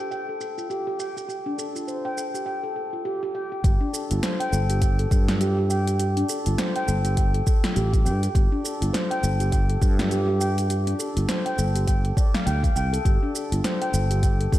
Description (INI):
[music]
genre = organic downtempo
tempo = 102 BPM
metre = 4/4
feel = swing 59% on 16ths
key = unclear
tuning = A4 = 435 Hz
[part]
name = handpan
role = arpeggios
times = 0.0-14.6 s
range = D4 to G5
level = -27 LUFS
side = equal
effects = tape echo, slapback echo
[part]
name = deep house drum kit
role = drums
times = 0.1-14.6 s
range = hi-hat, shaker, snare drum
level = -30 LUFS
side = equal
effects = overdrive
[part]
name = sustaining fretless electric bass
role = bass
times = 3.6-14.6 s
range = G1 to G2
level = -23 LUFS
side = equal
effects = tube saturation, sidechain pumping
[part]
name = electronic kick drum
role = drums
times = 3.6-14.6 s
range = none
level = -21 LUFS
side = equal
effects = overdrive
[sound]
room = moderate recital hall reverb, RT60 1.5 s, digital ambience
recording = big arena sound, low-pass filter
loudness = -21 LUFS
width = side -14 dB against mid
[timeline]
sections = 0.0-3.6 A section; 3.6-14.6 B section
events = filter sweep on handpan 0.0-3.6; filter sweep 0.0-3.6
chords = 0.0 Gsus2